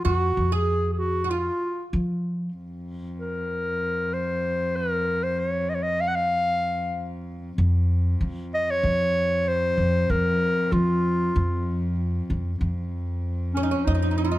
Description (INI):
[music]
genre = arabic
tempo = 95 BPM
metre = 4/4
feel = straight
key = F maqam kurd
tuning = A4 = 440 Hz
[part]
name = mellow clarinet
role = melody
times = 0.0-14.4 s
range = Db4 to Gb5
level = -25 LUFS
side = left 1 dB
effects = none
[part]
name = oud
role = second line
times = 0.0-1.9, 13.6-14.4 s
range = Db4 to Ab4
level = -30 LUFS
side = right 9 dB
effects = none
[part]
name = upright bass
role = bass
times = 0.1-2.5, 7.6-14.4 s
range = F2 to F3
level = -24 LUFS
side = equal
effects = none
[part]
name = warm cello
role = drone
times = 2.6-14.4 s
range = F2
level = -30 LUFS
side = left 1 dB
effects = none
[sound]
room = light reverb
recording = close, detailed microphones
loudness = -22 LUFS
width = side -16 dB against mid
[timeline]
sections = 0.0-2.6 A section; 2.6-12.6 B section; 12.6-14.4 C section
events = none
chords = none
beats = | 0.04 0.67 1.30 1.93 | 2.56 3.18 3.81 4.44 | 5.07 5.70 6.33 6.96 | 7.58 8.21 8.84 9.47 | 10.10 10.73 11.36 11.98 | 12.61 13.24 13.87